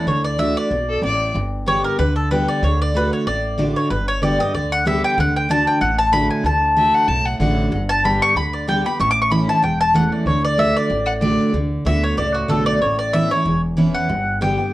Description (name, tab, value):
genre	bluegrass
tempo	188 BPM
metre	4/4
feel	straight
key	D major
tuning	A4 = 440 Hz
part	mandolin	melody	0.0-14.7 s	F#4 to D6	-19 LUFS	equal	none
part	picked steel-string acoustic guitar	accompaniment	0.0-14.7 s	E2 to G4	-20 LUFS	equal	none
part	upright bass	bass	0.1-14.6 s	E1 to D2	-24 LUFS	equal	none
part	clear fiddle	second line	0.9-1.3, 6.8-7.8, 11.1-11.5 s	A4 to A5	-24 LUFS	left 1 dB	none
room	light reverb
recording	worn, warbling old tape, cassette tape, warbly pitch drift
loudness	-16 LUFS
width	side -16 dB against mid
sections	0.0-1.4 A section; 1.4-11.5 A section; 11.5-14.7 B section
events	mandolin solo 11.5-14.7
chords	0.1 D; 1.4 G; 2.6 D; 3.9 G; 5.2 D; 7.7 G; 9.0 A; 10.3 D; 11.5 D6; 12.8 Aadd9; 14.1 G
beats	| 0.07 0.39 0.71 1.03 | 1.35 1.67 1.99 2.31 | 2.63 2.95 3.27 3.59 | 3.91 4.22 4.54 4.86 | 5.18 5.50 5.82 6.13 | 6.45 6.77 7.09 7.40 | 7.72 8.04 8.36 8.68 | 8.99 9.31 9.63 9.95 | 10.26 10.58 10.90 11.22 | 11.54 11.86 12.18 12.49 | 12.81 13.13 13.45 13.77 | 14.09 14.41